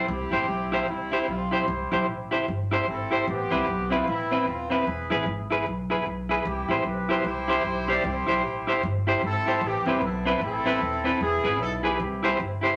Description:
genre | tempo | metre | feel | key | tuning
ska | 151 BPM | 4/4 | swing 59% on 8ths | C major | A4 = 440 Hz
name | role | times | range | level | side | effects
warm horn section | melody | 0.0-12.6 s | G3 to D5 | -31 LUFS | equal | none
clean electric guitar | accompaniment | 0.0-12.8 s | C4 to C5 | -28 LUFS | equal | tremolo, tape echo
upright bass | bass | 0.0-12.7 s | Eb1 to C2 | -34 LUFS | equal | none
room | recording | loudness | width
wet club reverb, RT60 0.8 s | none | -26 LUFS | mono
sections
0.1-12.8 A section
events
none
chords
0.1 C; 3.3 Amadd9; 4.9 E; 6.5 C; 9.6 Amadd9; 11.2 E; 12.0 C

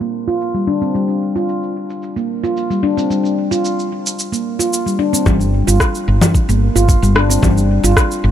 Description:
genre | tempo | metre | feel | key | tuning
organic downtempo | 111 BPM | 4/4 | straight | G minor pentatonic | A4 = 441 Hz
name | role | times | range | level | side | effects
handpan | arpeggios | 0.0-8.0 s | G3 to F4 | -17 LUFS | equal | low-pass filter, digital delay
electronic shaker, congas and rim click | drums | 0.0-8.2 s | none | -18 LUFS | left 1 dB | none
woody fretless electric bass | bass | 5.3-8.3 s | G1 | -14 LUFS | equal | tube saturation, wide subtle chorus
electronic kick drum | drums | 5.3-8.1 s | none | -15 LUFS | equal | none
room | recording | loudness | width
digital ambience | low-pass filter | -13 LUFS | side -10 dB against mid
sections
0.0-5.3 A section; 5.3-8.3 B section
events
filter sweep on handpan 0.0-5.3; filter sweep 0.0-5.3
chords
0.0 Gm7; 5.3 G7(no3)

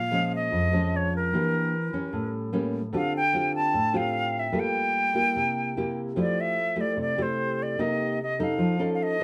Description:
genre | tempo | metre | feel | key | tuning
bossa nova | 149 BPM | 4/4 | straight | F major | A4 = 444 Hz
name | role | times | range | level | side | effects
silver concert flute | melody | 0.0-9.2 s | Bb4 to A5 | -29 LUFS | equal | none
nylon-string guitar | accompaniment | 0.0-9.2 s | F2 to A4 | -29 LUFS | equal | none
vibraphone with medium hard mallets | accompaniment | 3.5-4.7 s | G5 | -35 LUFS | equal | none
room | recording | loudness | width
moderate studio reverb, RT60 0.5 s | band playing live in one room | -26 LUFS | mono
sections
0.0-9.2 A section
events
none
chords
0.0 Bbm7; 1.3 Em7b5; 2.1 A7b9; 2.9 Dm7; 4.5 Gm9; 5.4 C7; 6.2 Fmaj9; 7.8 Cm7; 8.6 F7b13

